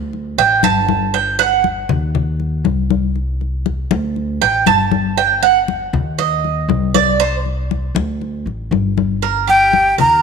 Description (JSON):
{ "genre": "latin, Cuban son and guajira", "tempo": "119 BPM", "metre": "4/4", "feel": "straight", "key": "unclear", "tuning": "A4 = 440 Hz", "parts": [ { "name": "upright bass", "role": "bass", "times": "0.0-10.2 s", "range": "G1 to Eb2", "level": "-21 LUFS", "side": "equal", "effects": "none" }, { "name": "congas", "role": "percussion", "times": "0.1-10.2 s", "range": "none", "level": "-19 LUFS", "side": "left 12 dB", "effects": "none" }, { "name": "Cuban tres", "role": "arpeggios", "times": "0.4-10.2 s", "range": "G4 to A5", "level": "-15 LUFS", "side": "right 8 dB", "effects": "none" }, { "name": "breathy jazz flute", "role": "melody", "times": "9.5-10.2 s", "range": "G5 to Bb5", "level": "-10 LUFS", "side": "equal", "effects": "none" } ], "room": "moderate echo chamber reverb, RT60 2.0 s", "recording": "1960s-style stereo with parts hard left and right", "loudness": "-14 LUFS", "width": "side -5 dB against mid", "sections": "0.0-9.2 A section", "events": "Cuban tres solo 0.0-9.2", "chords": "0.1 D5; 1.1 Eb/G; 2.2 Cm; 3.2 Csus2; 4.2 D5; 5.2 Eb/G; 6.2 Cmadd9; 7.2 Csus2; 8.2 D5; 9.2 Gm" }